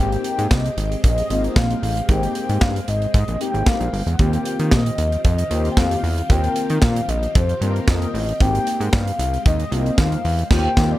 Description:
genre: early-eighties boogie funk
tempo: 114 BPM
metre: 4/4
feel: straight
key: unclear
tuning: A4 = 440 Hz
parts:
  - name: mellow horn-like synth lead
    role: melody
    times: 0.0-11.0 s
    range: C5 to G5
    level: -26 LUFS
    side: left 2 dB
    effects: chorus
  - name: mellow synth brass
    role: accompaniment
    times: 0.0-11.0 s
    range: Bb3 to Bb4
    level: -26 LUFS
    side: left 2 dB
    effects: chorus
  - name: string machine, full ensemble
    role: sustained chords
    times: 0.0-11.0 s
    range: Eb3 to G4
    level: -32 LUFS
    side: equal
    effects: ensemble chorus
  - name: fat analog bass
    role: bass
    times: 0.0-11.0 s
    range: G1 to Eb3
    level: -21 LUFS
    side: equal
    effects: none
  - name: modern studio drum kit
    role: drums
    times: 0.1-10.9 s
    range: crash cymbal, handclaps, hi-hat, kick drum, snare drum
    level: -19 LUFS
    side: equal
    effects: none
room: light reverb, small room reverb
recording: none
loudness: -17 LUFS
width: side -15 dB against mid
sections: 0.0-11.0 A section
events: band accent 10.5-11.0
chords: 0.0 Abmaj9; 4.2 Eb69; 8.4 Abmaj9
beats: 0.51 1.03 1.56 | 2.09 2.61 3.14 3.67 | 4.19 4.72 5.25 5.77 | 6.30 6.83 7.35 7.88 | 8.40 8.93 9.46 9.98 | 10.51

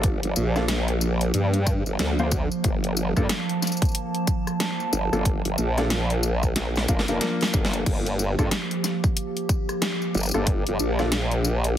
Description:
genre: glitch hop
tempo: 92 BPM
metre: 4/4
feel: swing 61% on 16ths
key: G minor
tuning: A4 = 440 Hz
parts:
  - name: warbly tape-like pad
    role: sustained chords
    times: 0.0-11.8 s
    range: F3 to A5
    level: -29 LUFS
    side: right 2 dB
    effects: chorus, built-in reverb, vintage 12-bit sampler grit, sidechain pumping
  - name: formant-sweep wobble bass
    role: bass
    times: 0.0-11.8 s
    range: F1 to G2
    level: -24 LUFS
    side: equal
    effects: chorus, overdrive
  - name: dubstep drum kit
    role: drums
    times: 0.0-11.7 s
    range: crash cymbal, hi-hat, rim click, snare drum, tambourine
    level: -28 LUFS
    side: left 1 dB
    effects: none
  - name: electronic kick drum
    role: drums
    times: 0.0-10.6 s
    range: none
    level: -24 LUFS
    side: equal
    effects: none
  - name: dark grand piano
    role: stabs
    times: 0.6-11.1 s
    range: Bb3 to C5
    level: -30 LUFS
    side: left 2 dB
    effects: vintage 12-bit sampler grit, sidechain pumping, ping-pong delay
room: light reverb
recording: heavily compressed radio sound, multiband compression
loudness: -21 LUFS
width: side -10 dB against mid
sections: 0.0-11.8 A section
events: drum fill 6.6-7.9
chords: 0.0 Gm7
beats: | 0.04 0.69 1.34 1.99 | 2.64 3.30 3.95 4.60 | 5.25 5.91 6.56 7.21 | 7.86 8.51 9.17 9.82 | 10.47 11.12 11.78

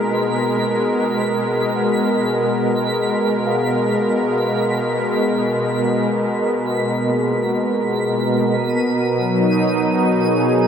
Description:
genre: ambient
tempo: free time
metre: none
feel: none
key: G# dorian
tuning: A4 = 441 Hz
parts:
  - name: warm analog pad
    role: sustained chords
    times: 0.0-10.7 s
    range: B2 to A#4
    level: -17 LUFS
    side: equal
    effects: chorus, tremolo
  - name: muted felt-like synth keys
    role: arpeggios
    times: 0.0-9.1 s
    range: G#3 to F#5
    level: -31 LUFS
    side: left 1 dB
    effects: none
  - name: pedal harmonium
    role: drone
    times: 0.0-8.5 s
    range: G#3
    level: -27 LUFS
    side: left 4 dB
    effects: none
  - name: twinkling granular texture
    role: texture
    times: 0.0-10.7 s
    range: B6 to D#7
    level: -30 LUFS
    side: equal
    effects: built-in reverb
room: wet plate reverb, RT60 2.6 s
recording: echo-heavy mix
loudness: -16 LUFS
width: side -7 dB against mid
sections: 0.0-8.5 A section; 8.5-10.7 B section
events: fade-in on harmonium 0.0-8.5; fade-out on synth keys 0.0-8.5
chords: 0.0 G#m9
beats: free time

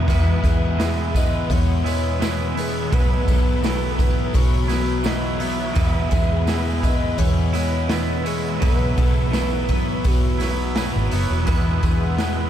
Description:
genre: rock, shoegaze and dream pop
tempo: 84 BPM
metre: 4/4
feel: straight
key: unclear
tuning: A4 = 441 Hz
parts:
  - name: hollow clarinet-like synth lead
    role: melody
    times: 0.0-12.5 s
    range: F#4 to F#5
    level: -30 LUFS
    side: equal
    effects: chorus, diffuse ambient delay
  - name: picked twelve-string acoustic guitar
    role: arpeggios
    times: 0.0-12.5 s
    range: G#4 to C#5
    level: -33 LUFS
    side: left 5 dB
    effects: ensemble chorus, diffuse ambient delay
  - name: fuzz guitar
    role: riff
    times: 0.0-12.5 s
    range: E2 to B3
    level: -27 LUFS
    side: left 7 dB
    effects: distortion, analog chorus
  - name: twangy electric guitar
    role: riff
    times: 0.0-12.5 s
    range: B2 to E4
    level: -26 LUFS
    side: right 7 dB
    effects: reverse reverb
  - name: vintage muted fingered electric bass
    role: bass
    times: 0.0-12.5 s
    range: E1 to E2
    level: -23 LUFS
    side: equal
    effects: none
  - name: raw garage drum kit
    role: drums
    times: 0.1-12.3 s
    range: hi-hat, kick drum, snare drum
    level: -22 LUFS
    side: equal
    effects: none
  - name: tambourine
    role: percussion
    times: 0.1-12.4 s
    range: none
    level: -44 LUFS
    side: right 15 dB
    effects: none
room: moderate huge ambient reverb, RT60 7.3 s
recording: dreamy mix soaked in reverb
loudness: -18 LUFS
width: side -10 dB against mid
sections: 0.1-12.5 A section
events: none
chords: 0.1 E; 2.9 Bsus4; 5.8 E; 8.6 Bsus4; 11.5 E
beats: | 0.08 0.79 1.50 2.21 | 2.92 3.63 4.34 5.05 | 5.76 6.48 7.19 7.90 | 8.62 9.33 10.04 10.76 | 11.47 12.18

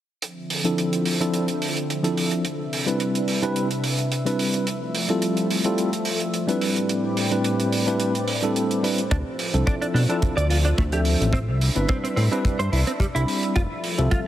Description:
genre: nu-disco, nu disco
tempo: 108 BPM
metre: 4/4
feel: swing 54% on 16ths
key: D dorian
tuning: A4 = 440 Hz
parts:
  - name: lush unison pad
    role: sustained chords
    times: 0.2-14.3 s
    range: A2 to B5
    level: -28 LUFS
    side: equal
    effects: chorus, sidechain pumping
  - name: hi-hat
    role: drums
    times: 0.2-14.2 s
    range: none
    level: -29 LUFS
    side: right 3 dB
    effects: small room reverb
  - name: tine electric piano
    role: accompaniment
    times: 0.6-14.3 s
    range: F3 to B5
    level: -24 LUFS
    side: equal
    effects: medium stereo tremolo, sidechain pumping, tape echo
  - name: direct-recorded clean electric guitar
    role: riff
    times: 9.1-14.2 s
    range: G3 to D5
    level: -28 LUFS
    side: right 2 dB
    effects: ensemble chorus, tape echo
  - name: fat analog bass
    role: bass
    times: 9.1-14.1 s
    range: F1 to B2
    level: -21 LUFS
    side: equal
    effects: sidechain pumping
  - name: kick drum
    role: drums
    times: 9.1-14.2 s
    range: none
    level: -23 LUFS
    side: equal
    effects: small room reverb
room: moderate lush hall reverb, RT60 1.9 s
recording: heavily compressed radio sound, multiband compression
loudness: -20 LUFS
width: side -12 dB against mid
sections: 0.2-14.3 A section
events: filter sweep on analog synth pad 0.2-14.3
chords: 0.2 Dm9; 2.4 Cmaj9; 4.7 Fmaj7; 6.6 Am11; 9.1 Dm9; 11.3 Cmaj9; 13.6 Fmaj7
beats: | 0.22 0.78 1.33 1.89 | 2.45 3.00 3.56 4.11 | 4.67 5.22 5.78 6.33 | 6.89 7.45 8.00 8.56 | 9.11 9.67 10.22 10.78 | 11.34 11.89 12.45 13.00 | 13.56 14.11

